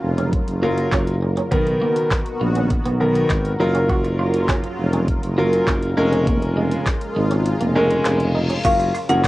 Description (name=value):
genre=dance-pop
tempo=101 BPM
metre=4/4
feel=straight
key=F# major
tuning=A4 = 438 Hz
part: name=lush unison pad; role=sustained chords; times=0.0-9.3 s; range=C#3 to A#4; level=-26 LUFS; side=equal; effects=chorus, phaser, sidechain pumping, cassette tape
part: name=mellow tuba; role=bass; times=0.0-9.3 s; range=E#1 to B1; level=-21 LUFS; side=equal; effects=sidechain pumping
part: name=clean electric guitar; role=riff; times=0.2-9.3 s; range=G#3 to F#4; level=-27 LUFS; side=right 2 dB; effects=analog chorus, cassette tape
part: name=smooth R&B drum kit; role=drums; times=0.2-9.3 s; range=crash cymbal, handclaps, hi-hat, kick drum, shaker, snare drum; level=-22 LUFS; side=equal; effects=cassette tape
part: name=clear grand piano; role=accompaniment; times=0.6-9.3 s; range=D#3 to A#4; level=-20 LUFS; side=equal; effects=sidechain pumping, cassette tape, plate reverb
part: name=reverse cymbal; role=sound effects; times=8.0-8.6 s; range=none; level=-32 LUFS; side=left 2 dB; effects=none
part: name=marimba with medium hard mallets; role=melody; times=8.6-9.3 s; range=E#5 to F#5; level=-18 LUFS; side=left 2 dB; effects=cassette tape, plate reverb
room=moderate booth ambience, RT60 0.2 s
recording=home recording on cassette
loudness=-17 LUFS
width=side -18 dB against mid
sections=0.0-8.6 A section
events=kick muted 7.5-8.6; reverse cymbal 8.0-8.6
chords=0.0 F#maj7; 1.5 Bmaj7; 3.6 F#maj7; 6.0 A#m7/E#; 8.6 F#maj7